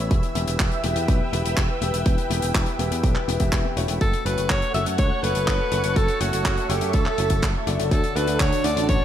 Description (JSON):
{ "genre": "italo disco", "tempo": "123 BPM", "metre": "4/4", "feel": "straight", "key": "E dorian", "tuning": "A4 = 441 Hz", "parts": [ { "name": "lush unison pad", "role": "sustained chords", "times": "0.0-9.0 s", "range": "D4 to E6", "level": "-28 LUFS", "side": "right 1 dB", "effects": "chorus, phaser" }, { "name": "clear grand piano", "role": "stabs", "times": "0.0-9.0 s", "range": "D3 to G5", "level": "-30 LUFS", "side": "left 4 dB", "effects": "low-pass filter" }, { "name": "picked electric bass", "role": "bass", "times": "0.0-9.0 s", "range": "E1 to F#2", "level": "-26 LUFS", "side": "equal", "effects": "none" }, { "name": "damped 70s drum kit", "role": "drums", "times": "0.1-9.0 s", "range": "handclaps, hi-hat", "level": "-29 LUFS", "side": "left 1 dB", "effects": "studio reverb" }, { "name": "electronic kick drum", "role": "drums", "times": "0.1-9.0 s", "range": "none", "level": "-23 LUFS", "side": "equal", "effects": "studio reverb" }, { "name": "bright alto saxophone", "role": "melody", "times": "4.0-9.0 s", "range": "F#4 to E5", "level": "-26 LUFS", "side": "left 1 dB", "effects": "digital delay" } ], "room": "light reverb, small room reverb", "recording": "none", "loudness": "-20 LUFS", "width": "side -10 dB against mid", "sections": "0.0-9.0 A section", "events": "none", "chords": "0.1 Em; 4.0 F#m; 7.9 D" }